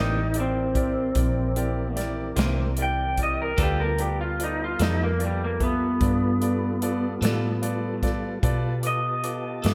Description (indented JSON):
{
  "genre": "slow blues",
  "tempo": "50 BPM (dotted quarters)",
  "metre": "12/8",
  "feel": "straight",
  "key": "unclear",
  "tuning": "A4 = 440 Hz",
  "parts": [
    { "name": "electric guitar through a small old amp", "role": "melody", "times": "0.0-9.7 s", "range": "G3 to G5", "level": "-29 LUFS", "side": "equal", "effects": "slapback echo" },
    { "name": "clean electric guitar", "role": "accompaniment", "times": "0.0-9.7 s", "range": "C3 to A4", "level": "-37 LUFS", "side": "equal", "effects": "tremolo" },
    { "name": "clear grand piano", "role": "accompaniment", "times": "0.0-9.7 s", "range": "C4 to D6", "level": "-36 LUFS", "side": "equal", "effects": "slapback echo" },
    { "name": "mellow tonewheel organ", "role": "sustained chords", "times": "0.0-9.7 s", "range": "E3 to A5", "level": "-35 LUFS", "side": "equal", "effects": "chorus vibrato, slow rotary speaker" },
    { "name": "vintage muted fingered electric bass", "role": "bass", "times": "0.0-9.7 s", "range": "A1 to B2", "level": "-30 LUFS", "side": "equal", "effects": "none" },
    { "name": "natural country drum kit", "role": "drums", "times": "0.3-9.7 s", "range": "hi-hat, kick drum, snare drum", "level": "-30 LUFS", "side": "equal", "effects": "none" }
  ],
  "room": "light reverb, small room ambience",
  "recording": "none",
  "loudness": "-25 LUFS",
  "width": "mono",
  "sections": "0.0-9.7 A section",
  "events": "clean electric guitar solo 0.0-9.7",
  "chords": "0.0 C9; 3.6 G9",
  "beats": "1.15 2.36 | 3.58 4.79 6.00 7.21 | 8.42 9.63"
}